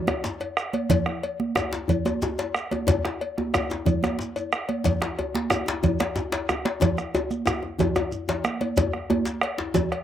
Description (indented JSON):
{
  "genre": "west african traditional, West African drum ensemble",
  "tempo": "122 BPM (dotted quarters)",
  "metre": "12/8",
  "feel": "straight",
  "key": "none",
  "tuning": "none",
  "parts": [
    { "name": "bombo", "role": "percussion", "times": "0.1-10.0 s", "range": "none", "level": "-27 LUFS", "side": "right 2 dB", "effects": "none" },
    { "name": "congas", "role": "percussion", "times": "0.1-9.9 s", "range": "none", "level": "-28 LUFS", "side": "right 5 dB", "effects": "none" },
    { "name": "cowbell", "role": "percussion", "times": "0.1-10.0 s", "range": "none", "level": "-30 LUFS", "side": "left 5 dB", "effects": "slapback echo" },
    { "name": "djembe", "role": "percussion", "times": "0.1-9.9 s", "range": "none", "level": "-28 LUFS", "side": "left 2 dB", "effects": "slapback echo" },
    { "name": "djembe", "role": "percussion", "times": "0.2-9.7 s", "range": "none", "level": "-31 LUFS", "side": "left 4 dB", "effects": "none" },
    { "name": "shekere", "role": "percussion", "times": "0.2-9.9 s", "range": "none", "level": "-34 LUFS", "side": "equal", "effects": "none" }
  ],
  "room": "light reverb",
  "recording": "recorded outdoors, with no room sound",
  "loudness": "-23 LUFS",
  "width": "side -10 dB against mid",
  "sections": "0.0-8.8 A section; 8.8-10.0 B section",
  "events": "drum fill 6.8-8.8",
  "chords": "none",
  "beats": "0.41 | 0.90 1.40 1.89 2.38 | 2.88 3.37 3.86 4.36 | 4.85 5.34 5.83 6.32 | 6.81 7.30 7.79 8.28 | 8.77 9.26 9.75"
}